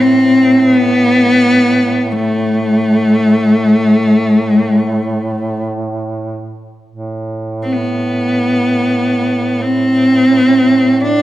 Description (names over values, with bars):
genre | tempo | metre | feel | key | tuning
caucasian folk, Caucasian lament | free time | none | none | A minor | A4 = 441 Hz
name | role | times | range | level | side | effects
rich cello | melody | 0.0-11.2 s | A3 to D4 | -10 LUFS | equal | none
warm duduk | drone | 0.0-11.2 s | A2 | -20 LUFS | right 2 dB | none
room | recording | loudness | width
light reverb | none | -10 LUFS | side -14 dB against mid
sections
0.0-6.9 A section; 6.9-11.2 A section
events
none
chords
none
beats
free time